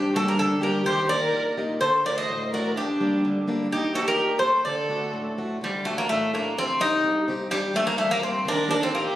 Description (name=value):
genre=greek folk, Greek bouzouki band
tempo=127 BPM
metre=2/4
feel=straight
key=D phrygian dominant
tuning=A4 = 440 Hz
part: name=Greek bouzouki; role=melody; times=0.0-9.2 s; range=G3 to Eb5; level=-24 LUFS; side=equal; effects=none
part: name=dark violin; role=second line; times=0.0-5.3, 8.5-9.2 s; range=D4 to C5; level=-27 LUFS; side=equal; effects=none
part: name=picked plugged-in swing-style acoustic guitar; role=accompaniment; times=0.0-9.2 s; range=G2 to G4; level=-28 LUFS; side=equal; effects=none
room=moderate plate reverb, RT60 3.4 s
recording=recorded on a phone in the room, studio reverb, compression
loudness=-22 LUFS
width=side -13 dB against mid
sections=0.0-5.6 A section; 5.6-9.2 A section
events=none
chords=0.0 Gm; 0.9 Eb; 1.8 D; 2.8 Gm; 3.7 Eb; 4.7 D; 6.6 Cm; 7.5 Gm; 8.5 Eb